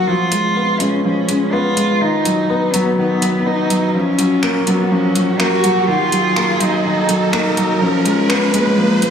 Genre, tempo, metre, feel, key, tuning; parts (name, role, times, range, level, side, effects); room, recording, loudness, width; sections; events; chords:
piano and strings electronica; 124 BPM; 4/4; straight; F# major; A4 = 440 Hz
dark cello; melody; 0.0-9.1 s; A#3 to F#4; -17 LUFS; equal; digital delay
felt-muted upright piano; riff; 0.0-9.1 s; D#3 to B3; -16 LUFS; left 1 dB; digital delay
warm sub bass; bass; 0.0-9.1 s; barely audible
riser; sound effects; 0.2-9.1 s; -25 LUFS; right 2 dB
deep house drum kit; drums; 0.3-9.1 s; finger snaps, hi-hat; -22 LUFS; right 1 dB; overdrive, high-pass filter on hats, high-pass filter on snare, high-pass filter on room
wet lush hall reverb, RT60 2.1 s; small room reverb; -13 LUFS; side -7 dB against mid
0.0-9.1 A section
build-up 0.0-9.1; riser 0.2-9.1
0.1 C#7; 2.0 B; 3.9 F#maj7; 5.9 D#m; 7.8 C#7